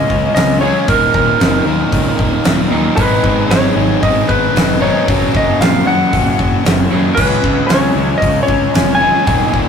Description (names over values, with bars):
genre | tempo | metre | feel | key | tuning
hard rock | 114 BPM | 4/4 | straight | unclear | A4 = 440 Hz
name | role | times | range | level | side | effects
lightly driven lead guitar | melody | 0.0-9.7 s | Bb4 to Ab5 | -16 LUFS | left 2 dB | analog delay
cranked stack guitar | riff | 0.0-9.7 s | Eb2 to Db4 | -21 LUFS | right 3 dB | overdrive, phaser
crunchy overdriven guitar | riff | 0.0-9.7 s | Eb2 to Ab4 | -20 LUFS | equal | none
distorted electric guitar | riff | 0.0-9.7 s | Eb2 to Db4 | -23 LUFS | left 7 dB | overdrive
fuzz fingered electric bass | bass | 0.1-9.7 s | Eb1 to Gb2 | -20 LUFS | equal | overdrive
huge arena drum kit | drums | 0.1-9.7 s | crash cymbal, hi-hat, kick drum, snare drum | -16 LUFS | right 1 dB | none
room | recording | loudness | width
moderate booth ambience, RT60 0.2 s | rough rehearsal-room recording, warm saturation | -11 LUFS | side -7 dB against mid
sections
0.0-9.7 A section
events
none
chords
0.0 Db; 0.9 Ebm; 3.0 Abm; 5.1 Gb; 7.2 Db